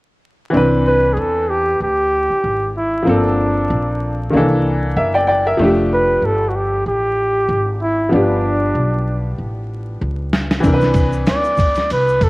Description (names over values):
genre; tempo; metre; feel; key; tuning
hip hop, jazz-hop; 95 BPM; 4/4; swing 57% on 16ths; C major; A4 = 440 Hz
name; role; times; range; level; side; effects
clear upright piano; accompaniment; 0.5-12.3 s; Eb3 to G5; -18 LUFS; left 1 dB; cassette tape
upright bass; bass; 0.5-12.3 s; F1 to E2; -21 LUFS; equal; none
trumpet with bucket mute; melody; 0.9-12.3 s; D4 to D5; -17 LUFS; right 1 dB; cassette tape
dusty soul sampler-style drum kit; drums; 10.3-12.3 s; hi-hat, kick drum, ride cymbal, snare drum; -17 LUFS; equal; cassette tape
egg shaker and congas; percussion; 10.6-12.3 s; none; -34 LUFS; right 2 dB; none
room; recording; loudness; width
light reverb, small room reverb; home recording on cassette, vinyl crackle; -14 LUFS; side -21 dB against mid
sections
0.5-12.3 A section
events
drum fill 10.0-10.6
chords
0.5 Cmaj9; 3.1 Gm11; 4.3 C13; 5.6 F69; 8.1 G7; 10.6 Cmaj9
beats
| 0.53 1.16 1.79 2.43 | 3.06 3.69 4.32 4.95 | 5.58 6.21 6.85 7.48 | 8.11 8.74 9.37 10.01 | 10.64 11.27 11.90